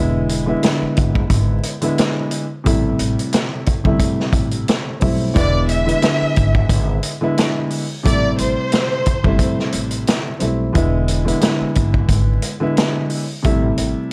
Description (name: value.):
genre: hip hop, boom-bap hip-hop.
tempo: 89 BPM.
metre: 4/4.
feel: swing 54% on 16ths.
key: A minor.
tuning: A4 = 436 Hz.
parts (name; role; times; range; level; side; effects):
dark baby grand piano; accompaniment; 0.0-14.1 s; C3 to E4; -22 LUFS; equal; none.
upright bass; bass; 0.0-13.9 s; E1 to B1; -22 LUFS; equal; tube saturation.
vintage drum kit; drums; 0.3-13.9 s; hi-hat, kick drum, snare drum; -21 LUFS; equal; none.
warm studio violin section; melody; 5.4-9.5 s; C5 to E5; -24 LUFS; equal; tape echo.
room: light reverb.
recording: dry, gritty hardware recording, vinyl crackle.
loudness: -18 LUFS.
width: mono.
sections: 0.0-14.1 A section.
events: none.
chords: 0.0 E7; 2.7 Am7; 5.4 E7; 8.1 Am7; 10.7 E7; 13.4 Am7.